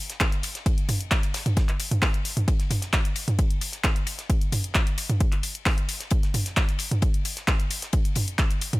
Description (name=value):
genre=techno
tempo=132 BPM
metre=4/4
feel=straight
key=none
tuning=none
part: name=damped 70s drum kit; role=drums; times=0.1-8.8 s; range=ride cymbal, snare drum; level=-38 LUFS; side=left 4 dB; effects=high-pass filter on cymbals, high-pass filter on snare, high-pass filter on room
part: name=punchy analog drum machine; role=drums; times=0.1-8.8 s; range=handclaps, hi-hat, toms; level=-26 LUFS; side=equal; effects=overdrive, sidechain pumping on hats, sidechain pumping on toms
part: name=electronic kick drum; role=drums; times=0.2-8.5 s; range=none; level=-24 LUFS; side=equal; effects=none
room=studio ambience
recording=none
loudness=-22 LUFS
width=side -20 dB against mid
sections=0.0-8.8 A section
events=none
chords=none